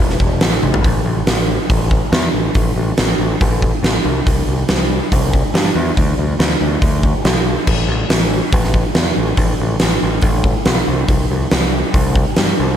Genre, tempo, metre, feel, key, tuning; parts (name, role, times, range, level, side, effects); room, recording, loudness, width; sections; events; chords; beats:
classic rock; 141 BPM; 4/4; straight; A minor; A4 = 440 Hz
growling picked electric bass; bass; 0.0-12.7 s; E1 to G2; -18 LUFS; equal; overdrive
huge arena drum kit; drums; 0.1-12.5 s; crash cymbal, hi-hat, kick drum, snare drum, toms; -15 LUFS; equal
light reverb; -13 LUFS; side -9 dB against mid
0.8-12.8 A section
drum fill 0.6
0.42 | 0.85 1.27 1.70 2.13 | 2.56 2.98 3.41 3.84 | 4.27 4.69 5.12 5.55 | 5.97 6.40 6.83 7.25 | 7.68 8.11 8.53 8.96 | 9.39 9.81 10.24 10.67 | 11.09 11.52 11.95 12.37